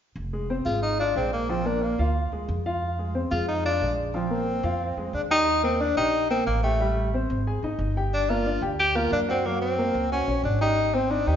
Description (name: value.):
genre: Afro-Cuban jazz.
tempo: 181 BPM.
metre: 4/4.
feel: straight.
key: Eb major.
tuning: A4 = 440 Hz.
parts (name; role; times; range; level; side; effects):
upright bass; bass; 0.2-11.4 s; F1 to Gb2; -29 LUFS; right 1 dB; none.
warm grand piano; accompaniment; 0.3-11.4 s; F3 to Ab5; -28 LUFS; equal; none.
warm tenor saxophone; melody; 0.7-11.4 s; A3 to G4; -24 LUFS; left 1 dB; none.
room: wet recital hall reverb, RT60 1.6 s.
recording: recorded in a church or concert hall, nothing above 7.4 kHz.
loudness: -22 LUFS.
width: side -9 dB against mid.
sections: 0.2-5.5 A section; 5.5-11.4 B section.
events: none.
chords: 0.2 Fm; 1.5 Bb7; 2.8 Fm; 4.1 Bbsus2; 5.5 Ebmaj7; 6.8 Am7; 7.5 Ab5; 8.1 Gm7; 9.4 Gbadd9; 10.8 Abmaj7.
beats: | 0.17 0.50 0.83 1.16 | 1.49 1.82 2.15 2.49 | 2.82 3.15 3.48 3.81 | 4.15 4.48 4.81 5.14 | 5.47 5.80 6.13 6.47 | 6.80 7.13 7.46 7.79 | 8.12 8.46 8.79 9.12 | 9.45 9.78 10.11 10.44 | 10.77 11.11.